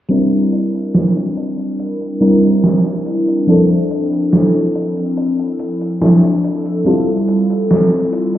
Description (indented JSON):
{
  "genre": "vaporwave",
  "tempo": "71 BPM",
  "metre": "4/4",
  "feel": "straight",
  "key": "unclear",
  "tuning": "A4 = 441 Hz",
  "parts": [
    { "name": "FM electric piano with soft pad layer", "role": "accompaniment", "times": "0.1-8.4 s", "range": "F3 to Bb4", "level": "-13 LUFS", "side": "equal", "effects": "phaser, lush chorus, cassette tape, analog delay" },
    { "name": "gated 80s digital drum machine", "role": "drums", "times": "0.1-8.4 s", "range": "hi-hat, snare drum", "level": "-16 LUFS", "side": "right 2 dB", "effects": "gated reverb, gated reverb snare, overdrive" }
  ],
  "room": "light reverb",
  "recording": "heard muffled through a wall, cassette tape, stone room reverb, EQ, low-pass filter",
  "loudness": "-12 LUFS",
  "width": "side -12 dB against mid",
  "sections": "0.1-8.4 A section",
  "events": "none",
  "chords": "0.1 C9; 3.5 Dm7; 6.9 Fmaj7"
}